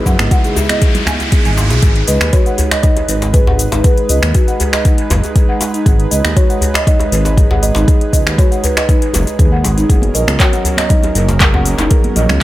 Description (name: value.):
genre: afro house.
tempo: 119 BPM.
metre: 4/4.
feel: straight.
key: G# minor.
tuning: A4 = 440 Hz.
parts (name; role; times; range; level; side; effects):
buzzing kalimba; melody; 0.0-12.4 s; G#4 to D#5; -22 LUFS; equal; dub echo.
warm analog pad; sustained chords; 0.0-12.4 s; C#3 to B4; -22 LUFS; right 4 dB; chorus, sidechain pumping.
riser; sound effects; 0.0-1.8 s; none; -22 LUFS; equal; none.
buzzing marimba with soft mallets; arpeggios; 0.1-12.3 s; D#4 to G#5; -21 LUFS; equal; sidechain pumping, dub echo.
dark detuned saw bass; bass; 0.1-12.4 s; F#1 to F#2; -15 LUFS; equal; tube saturation, sidechain pumping.
afro-pop drum kit; drums; 0.1-12.4 s; finger snaps, handclaps, hi-hat, shaker; -19 LUFS; left 1 dB; small room ambience, dub echo.
electronic kick drum; drums; 0.1-12.0 s; none; -11 LUFS; equal; small room ambience.
congas; percussion; 0.1-1.8, 10.0-12.4 s; none; -24 LUFS; right 2 dB; dub echo.
djembe; percussion; 0.1-12.4 s; none; -20 LUFS; left 1 dB; none.
room: light reverb, studio reverb.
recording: echo-heavy mix.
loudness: -10 LUFS.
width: side -15 dB against mid.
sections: 0.0-1.8 A section; 1.8-12.4 B section.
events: riser 0.0-1.8; drop 1.8-12.4.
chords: 0.0 C#m; 1.8 G#m; 9.9 F#6.